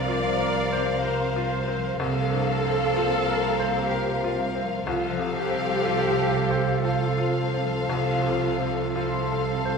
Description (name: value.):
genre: cinematic.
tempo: 56-63 BPM.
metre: 3/4.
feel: rubato.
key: unclear.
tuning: A4 = 441 Hz.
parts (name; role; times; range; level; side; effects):
clear symphonic violin section; melody; 0.0-9.8 s; F5; -33 LUFS; left 3 dB; none.
clear clarinet; second line; 0.0-9.8 s; A4 to Bb4; -35 LUFS; left 5 dB; none.
flute section; second line; 0.0-9.8 s; F5 to C6; -33 LUFS; left 3 dB; none.
rich studio violin section; second line; 0.0-9.8 s; A4 to C5; -34 LUFS; left 3 dB; none.
bright grand piano; accompaniment; 0.0-9.8 s; C2 to C5; -32 LUFS; left 1 dB; none.
rich symphonic viola section; accompaniment; 0.0-9.8 s; E4 to D5; -29 LUFS; right 2 dB; none.
clear French horn section; sustained chords; 0.0-9.8 s; F3 to Bb4; -33 LUFS; left 2 dB; none.
concert harp; arpeggios; 0.0-9.8 s; C3 to Bb5; -34 LUFS; left 5 dB; none.
rich symphonic cello section; bass; 0.0-9.8 s; C3; -33 LUFS; right 6 dB; none.
rich symphonic double bass section; bass; 0.0-9.8 s; C2; -31 LUFS; right 5 dB; none.
room: wet scoring stage reverb, RT60 1.6 s.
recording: minimal, uncompressed stereo recording.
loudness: -22 LUFS.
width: side -5 dB against mid.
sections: 0.0-9.8 A section.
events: none.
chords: 0.0 C7sus4; 4.9 Fmaj7/C.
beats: 0.09 1.05 | 2.00 2.96 3.91 | 4.87 5.85 6.85 | 7.90 8.96.